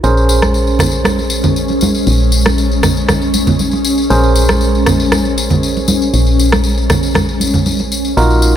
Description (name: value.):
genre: afro house.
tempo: 118 BPM.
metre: 4/4.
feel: straight.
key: Bb minor.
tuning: A4 = 440 Hz.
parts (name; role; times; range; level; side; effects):
ethereal airy pad; sustained chords; 0.3-8.6 s; Eb3 to F5; -18 LUFS; left 1 dB; ensemble chorus, built-in reverb.
barky tine electric piano; stabs; 0.0-8.6 s; Db4 to C5; -18 LUFS; right 3 dB; medium stereo tremolo, low-pass filter, tape echo.
woody FM bass; bass; 0.0-8.6 s; Bb1; -15 LUFS; equal; none.
congas; percussion; 0.0-8.3 s; none; -16 LUFS; right 2 dB; none.
tambourine; percussion; 0.0-8.5 s; none; -21 LUFS; left 5 dB; none.
electronic rim click; drums; 0.4-7.3 s; none; -19 LUFS; equal; low-pass filter on snare.
room: light reverb, small room ambience.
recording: none.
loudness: -10 LUFS.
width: side -10 dB against mid.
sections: 0.0-8.6 A section.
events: none.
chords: 0.0 Bbm9.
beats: | 0.04 0.54 1.05 1.56 | 2.07 2.58 3.09 3.59 | 4.10 4.61 5.12 5.63 | 6.14 6.64 7.15 7.66 | 8.17.